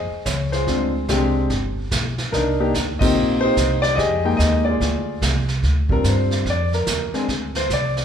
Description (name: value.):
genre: jazz piano trio.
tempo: 145 BPM.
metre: 4/4.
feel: swing 64% on 8ths.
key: unclear.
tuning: A4 = 440 Hz.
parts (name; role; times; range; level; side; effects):
warm grand piano; melody; 0.0-8.0 s; G3 to G5; -20 LUFS; left 2 dB; none.
upright bass; bass; 0.0-8.0 s; G1 to G2; -22 LUFS; equal; none.
vintage brush drum kit; drums; 0.3-8.0 s; brushed snare drum, crash cymbal, hi-hat, kick drum, snare drum; -25 LUFS; right 2 dB; none.
room: wet large studio reverb, RT60 1.3 s.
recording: band playing live in one room.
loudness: -18 LUFS.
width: side -8 dB against mid.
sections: 0.0-5.6 A section; 5.6-8.0 B section.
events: band accent 2.9; grand piano solo 5.6-8.0.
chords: 0.0 Dbmaj9; 0.7 Dm7b5; 1.5 G; 2.3 Cm9; 4.0 Fm11; 4.8 Fm6; 5.6 Bb69; 7.3 Csus2.